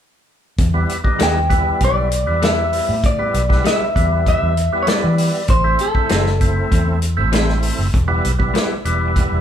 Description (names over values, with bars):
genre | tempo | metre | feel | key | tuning
straight-eighth soul blues | 98 BPM | 4/4 | straight | E minor | A4 = 442 Hz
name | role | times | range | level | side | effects
vintage muted fingered electric bass | bass | 0.6-9.4 s | E1 to E3 | -19 LUFS | equal | none
warm soul drum kit | drums | 0.6-9.3 s | hi-hat, kick drum, snare drum | -19 LUFS | equal | none
overdriven tonewheel organ | accompaniment | 0.7-9.4 s | G3 to E4 | -22 LUFS | right 2 dB | slow rotary speaker, chorus vibrato
electric guitar through a small old amp | melody | 1.2-7.0 s | A4 to G5 | -20 LUFS | left 1 dB | none
direct-recorded clean electric guitar | stabs | 1.2-8.7 s | E3 to E4 | -27 LUFS | left 4 dB | none
room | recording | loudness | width
moderate large studio reverb, RT60 1.2 s | band playing live in one room | -14 LUFS | side -9 dB against mid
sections
0.6-9.4 A section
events
tonewheel organ fill 9.2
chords
0.6 Em; 5.5 Am; 7.9 Em